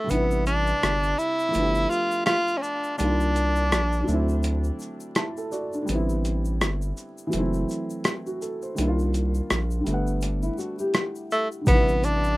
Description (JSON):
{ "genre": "lo-fi hip hop", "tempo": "83 BPM", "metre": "4/4", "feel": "swing 59% on 16ths", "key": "A dorian", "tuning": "A4 = 440 Hz", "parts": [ { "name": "bright tenor saxophone", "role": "melody", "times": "0.0-4.4, 11.3-12.4 s", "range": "A3 to F4", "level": "-24 LUFS", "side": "equal", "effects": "none" }, { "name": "felt-muted upright piano", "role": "accompaniment", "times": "0.0-12.4 s", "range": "C3 to A5", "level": "-29 LUFS", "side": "equal", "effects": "cassette tape" }, { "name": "saturated sub bass", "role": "bass", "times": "0.1-12.4 s", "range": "F#1 to D2", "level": "-25 LUFS", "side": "equal", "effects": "none" }, { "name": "boom bap sampler-style drum kit", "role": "drums", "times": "0.1-12.2 s", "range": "hi-hat, kick drum, rim click, shaker", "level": "-25 LUFS", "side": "equal", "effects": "overdrive" }, { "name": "tube shaker", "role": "percussion", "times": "0.1-12.4 s", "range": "none", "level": "-47 LUFS", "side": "left 5 dB", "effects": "none" }, { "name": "nylon-string guitar", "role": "second line", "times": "10.2-11.6 s", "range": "B3 to G4", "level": "-30 LUFS", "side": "left 2 dB", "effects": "tape echo" } ], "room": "little or no reverb", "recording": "rough home demo mix, vinyl crackle", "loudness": "-22 LUFS", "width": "side -20 dB against mid", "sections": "0.1-12.4 A section", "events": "kick muted 0.1-11.7; felt piano fill 4.8-5.9", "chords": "0.1 Am11; 1.5 G7; 3.0 Cm11; 4.1 D7; 5.9 Am11; 7.3 F#m7b5; 8.8 Cm11; 9.9 Gmaj7; 11.7 Am11", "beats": "| 0.10 0.82 1.55 2.27 | 2.99 3.71 4.44 5.16 | 5.88 6.61 7.33 8.05 | 8.78 9.50 10.22 10.94 | 11.67" }